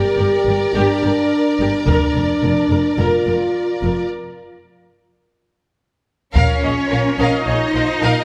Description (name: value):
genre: cinematic, epic orchestral film score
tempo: 107 BPM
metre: 4/4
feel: straight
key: unclear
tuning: A4 = 444 Hz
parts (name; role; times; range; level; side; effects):
- rich symphonic violin section; melody; 0.0-8.2 s; Db5 to Eb5; -30 LUFS; equal; none
- warm symphonic violin section; second line; 0.0-8.2 s; Ab4 to F5; -27 LUFS; equal; none
- dark French horn section; sustained chords; 0.0-8.2 s; Bb3 to G4; -22 LUFS; equal; none
- warm studio viola section; accompaniment; 0.2-8.2 s; G4 to Eb5; -26 LUFS; equal; none
- warm symphonic cello section; bass; 0.2-8.2 s; F2 to Eb4; -24 LUFS; equal; none
- warm symphonic double bass section; bass; 0.2-8.1 s; F1 to Bb1; -24 LUFS; equal; none
- taiko ensemble; drums; 1.9-3.0, 6.4-7.4 s; none; -20 LUFS; equal; none
room: wet scoring stage reverb, RT60 1.7 s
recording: none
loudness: -17 LUFS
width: mono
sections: 0.0-6.4 A section; 6.4-8.2 B section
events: break 4.1-6.4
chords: 0.0 Gm; 1.9 Bb/F; 4.1 N.C.; 6.4 Bbm